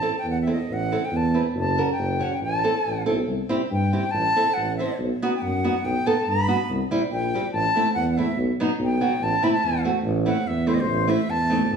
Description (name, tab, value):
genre	klezmer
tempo	141 BPM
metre	2/4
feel	straight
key	A dorian sharp4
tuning	A4 = 441 Hz
part	bright reedy silver concert flute	melody	0.0-11.7 s	C5 to B5	-25 LUFS	left 1 dB	none
part	nylon-string guitar	accompaniment	0.0-11.6 s	F#3 to C#5	-25 LUFS	right 2 dB	none
part	mellow tuba	bass	0.0-11.8 s	F#1 to G2	-25 LUFS	right 1 dB	none
room	wet stone room reverb, RT60 1.3 s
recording	band playing live in one room, studio reverb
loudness	-20 LUFS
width	side -6 dB against mid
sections	0.0-3.3 A section; 3.3-10.1 B section; 10.1-11.8 C section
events	speeding up 0.0-11.8; flute solo 10.1-11.8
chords	0.0 Am; 1.6 F#5; 2.4 Am; 3.3 C; 4.1 Am; 5.0 B; 6.7 C; 7.5 Am; 8.4 B5; 9.2 Am